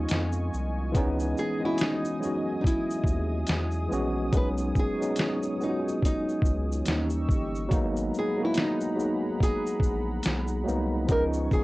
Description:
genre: lo-fi hip hop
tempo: 71 BPM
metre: 4/4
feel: swing 62% on 16ths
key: G# minor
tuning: A4 = 441 Hz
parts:
  - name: nylon-string guitar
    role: melody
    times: 0.0-11.6 s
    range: D#4 to B4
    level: -31 LUFS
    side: equal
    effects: low-pass filter, cassette tape
  - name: tine electric piano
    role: accompaniment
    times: 0.0-11.6 s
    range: E3 to F#4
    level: -29 LUFS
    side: equal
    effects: overdrive, fast stereo tremolo, cassette tape, low-pass filter
  - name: warm analog pad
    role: sustained chords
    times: 0.0-11.6 s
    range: E#4 to E6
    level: -38 LUFS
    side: equal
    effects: chorus, low-pass filter, cassette tape
  - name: round analog bass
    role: bass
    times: 0.0-11.5 s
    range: G1 to E#2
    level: -30 LUFS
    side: equal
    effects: tube saturation
  - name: lo-fi sampler-style drum kit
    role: drums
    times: 0.1-11.6 s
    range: hi-hat, kick drum, shaker, snare drum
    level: -27 LUFS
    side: equal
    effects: vintage 12-bit sampler grit, cassette tape
room: light reverb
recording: home recording on cassette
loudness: -25 LUFS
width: side -20 dB against mid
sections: 0.0-11.6 A section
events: none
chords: 0.0 C#9; 1.0 F#13sus4/C#; 4.3 B69; 6.9 D#7b9; 7.7 G#m9; 11.1 C#9

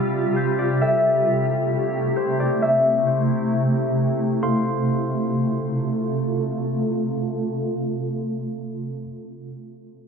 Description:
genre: hip hop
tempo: 133 BPM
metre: 4/4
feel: half-time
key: F major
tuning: A4 = 440 Hz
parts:
  - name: Celtic harp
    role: melody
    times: 0.0-6.4 s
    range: C5 to F5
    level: -23 LUFS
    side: left 2 dB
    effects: low-pass filter, ping-pong delay
  - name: granular cloud pad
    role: sustained chords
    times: 0.0-8.8 s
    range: C3 to A4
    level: -22 LUFS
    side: equal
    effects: built-in reverb, low-pass filter
  - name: mellow tine electric piano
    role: texture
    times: 0.0-9.0 s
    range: G4 to E6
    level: -34 LUFS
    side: right 2 dB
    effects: medium stereo tremolo
room: moderate huge ambient reverb, RT60 5.6 s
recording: heavily compressed radio sound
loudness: -20 LUFS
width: side -6 dB against mid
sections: 0.0-4.4 A section; 4.4-8.0 B section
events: filter sweep 0.0-4.4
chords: 0.0 Fsus2; 0.8 Am7; 4.4 F

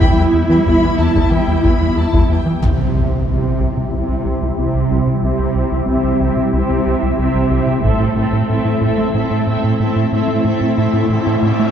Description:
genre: cinematic, hybrid orchestral and electronic film score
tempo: 92 BPM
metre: 4/4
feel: straight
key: unclear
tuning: A4 = 440 Hz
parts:
  - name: warm symphonic violin section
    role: second line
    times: 0.0-2.6 s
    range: G5 to B5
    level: -26 LUFS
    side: left 3 dB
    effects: none
  - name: rich symphonic viola section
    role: accompaniment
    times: 0.0-11.7 s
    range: E3 to A4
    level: -24 LUFS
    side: right 1 dB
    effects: low-pass filter
  - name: granular cloud pad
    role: sustained chords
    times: 0.0-11.7 s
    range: G3 to E5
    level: -20 LUFS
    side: left 1 dB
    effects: built-in reverb, low-pass filter
  - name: rubbery square bass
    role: riff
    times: 0.0-11.7 s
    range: C2 to A3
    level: -18 LUFS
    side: right 1 dB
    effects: low-pass filter
  - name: warm symphonic cello section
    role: bass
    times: 0.0-11.7 s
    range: A2 to E4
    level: -19 LUFS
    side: right 2 dB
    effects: none
  - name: taiko ensemble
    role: drums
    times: 0.0-3.9, 7.8-9.1 s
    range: none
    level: -20 LUFS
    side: equal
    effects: none
  - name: warm symphonic violin section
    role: melody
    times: 2.6-11.7 s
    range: E5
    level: -28 LUFS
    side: left 3 dB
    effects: low-pass filter
  - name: impact and reverse cymbal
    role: sound effects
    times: 2.6-5.2, 11.0-11.7 s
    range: none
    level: -23 LUFS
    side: equal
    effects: none
room: wet concert hall reverb, RT60 2.2 s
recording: heard from further back in the room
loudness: -13 LUFS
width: side -8 dB against mid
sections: 0.0-2.6 A section; 2.6-11.7 B section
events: impact 2.6-5.2; filter sweep 2.6-11.7; reverse cymbal 11.0-11.7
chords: 0.0 Em; 2.6 C; 7.8 Am

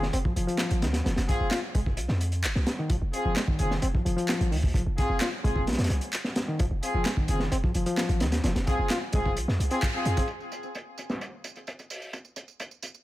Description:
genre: breakbeat, breaks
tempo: 130 BPM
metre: 4/4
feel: straight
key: F minor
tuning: A4 = 441 Hz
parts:
  - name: overdriven reed electric piano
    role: riff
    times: 0.0-10.2 s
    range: Eb3 to F4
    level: -33 LUFS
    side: left 1 dB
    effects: vintage 12-bit sampler grit, digital delay
  - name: mellow brass ensemble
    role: stabs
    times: 0.0-10.3 s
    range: C4 to Ab4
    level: -33 LUFS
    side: left 1 dB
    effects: digital delay
  - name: warm 808-style bass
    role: bass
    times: 0.0-10.2 s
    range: F1 to F2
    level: -28 LUFS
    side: equal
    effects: none
  - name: crunchy breakbeat drum kit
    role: drums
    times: 0.0-12.9 s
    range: hi-hat, kick drum, snare drum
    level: -29 LUFS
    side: equal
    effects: low-pass filter on kick, low-pass filter on hats, low-pass filter on snare, low-pass filter on room
  - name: electronic handclaps and tambourine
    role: drums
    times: 0.6-13.0 s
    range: none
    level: -34 LUFS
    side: equal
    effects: overdrive, low-pass filter on snare, low-pass filter on perc
room: little or no reverb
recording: none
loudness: -24 LUFS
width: side -16 dB against mid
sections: 0.0-10.3 A section; 10.3-13.0 B section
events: band accent 9.8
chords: 0.0 Fm; 10.3 N.C.

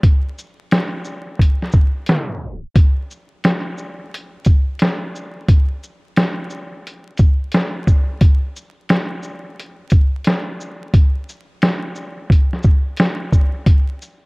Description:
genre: hip hop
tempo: 88 BPM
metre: 4/4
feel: swing 65% on 16ths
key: none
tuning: none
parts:
  - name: lo-fi sampler-style drum kit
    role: drums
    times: 0.0-14.2 s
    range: hi-hat, kick drum, shaker, snare drum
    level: -14 LUFS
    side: equal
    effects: none
room: light reverb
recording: worn, warbling old tape, cassette tape, vinyl crackle, warbly pitch drift, tape stop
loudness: -15 LUFS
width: side -31 dB against mid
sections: 0.0-2.8 A section; 2.8-14.3 B section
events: tape stop 2.1-2.8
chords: none

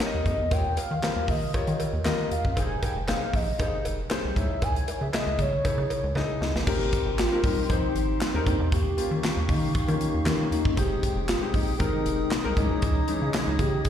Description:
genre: early-eighties boogie funk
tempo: 117 BPM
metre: 4/4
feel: straight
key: Ab major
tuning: A4 = 440 Hz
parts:
  - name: warm grand piano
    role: accompaniment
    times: 0.0-13.8 s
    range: Fb3 to Fb5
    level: -32 LUFS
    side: left 5 dB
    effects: slapback echo
  - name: modern studio drum kit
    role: drums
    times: 0.0-13.9 s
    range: crash cymbal, handclaps, hi-hat, kick drum, snare drum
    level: -28 LUFS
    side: equal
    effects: none
  - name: cowbell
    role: percussion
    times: 0.0-6.3 s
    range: none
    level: -38 LUFS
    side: right 2 dB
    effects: slapback echo
  - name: rubbery square bass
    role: bass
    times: 0.1-13.9 s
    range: F1 to Eb3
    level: -28 LUFS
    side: equal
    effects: none
  - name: warm velvety synth lead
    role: melody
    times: 0.3-13.9 s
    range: Eb4 to Ab5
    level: -30 LUFS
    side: equal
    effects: chorus, slapback echo
  - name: flute section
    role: sustained chords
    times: 6.7-13.9 s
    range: G4 to Eb6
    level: -36 LUFS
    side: left 1 dB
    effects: none
room: small room reverb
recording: live gig heard through the venue's PA, recital hall reverb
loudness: -23 LUFS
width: side -9 dB against mid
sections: 0.0-6.7 A section; 6.7-13.9 B section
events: drum fill 6.2-6.7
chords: 0.0 Abmaj7(no3) (rootless); 0.5 Eb9; 2.6 Fm9; 4.4 Dbmadd9; 6.7 Abmaj7; 8.7 Eb9; 10.8 Fm9; 12.6 Dbmadd9

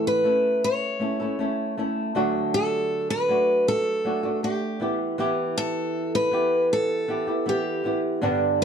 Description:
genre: pop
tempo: 79 BPM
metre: 4/4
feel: straight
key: unclear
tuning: A4 = 440 Hz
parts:
  - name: picked steel-string acoustic guitar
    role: melody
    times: 0.0-8.6 s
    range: G4 to C#5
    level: -24 LUFS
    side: equal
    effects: none
  - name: flamenco guitar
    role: accompaniment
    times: 0.0-8.6 s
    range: G2 to A4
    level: -25 LUFS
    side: right 1 dB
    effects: none
room: moderate studio reverb, RT60 0.6 s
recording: dark, warm production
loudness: -22 LUFS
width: side -7 dB against mid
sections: 0.0-8.6 A section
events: none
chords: 0.0 A; 2.2 D; 4.8 Em

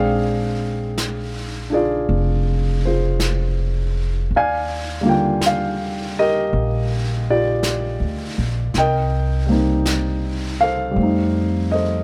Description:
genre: jazz ballad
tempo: 54 BPM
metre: 4/4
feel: swing 66% on 8ths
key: unclear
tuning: A4 = 441 Hz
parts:
  - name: warm grand piano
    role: accompaniment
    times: 0.0-12.0 s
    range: D3 to Ab5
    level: -22 LUFS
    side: equal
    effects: none
  - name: upright bass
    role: bass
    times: 0.0-12.0 s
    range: F1 to F2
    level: -24 LUFS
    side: equal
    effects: none
  - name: vintage brush drum kit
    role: drums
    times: 1.0-12.0 s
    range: brushed snare drum, hi-hat, snare drum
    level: -33 LUFS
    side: equal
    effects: none
room: little or no reverb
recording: none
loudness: -20 LUFS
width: mono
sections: 0.0-12.0 A section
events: none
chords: 0.0 Bb13; 4.3 Ebmaj9; 8.7 Cm7; 11.0 F7

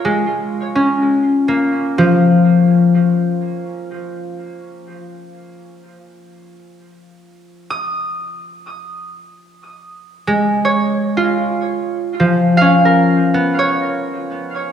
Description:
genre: ambient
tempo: 62 BPM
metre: 3/4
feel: straight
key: unclear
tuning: A4 = 439 Hz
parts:
  - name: concert harp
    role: solo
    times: 0.0-14.7 s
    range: F3 to Eb6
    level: -14 LUFS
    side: left 1 dB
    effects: diffuse ambient delay
room: wet concert hall reverb, RT60 1.9 s, small room ambience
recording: none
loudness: -13 LUFS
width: side -9 dB against mid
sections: 0.0-14.7 A section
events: none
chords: 0.1 Fsus4; 5.9 Ab5; 11.7 Cbsus2

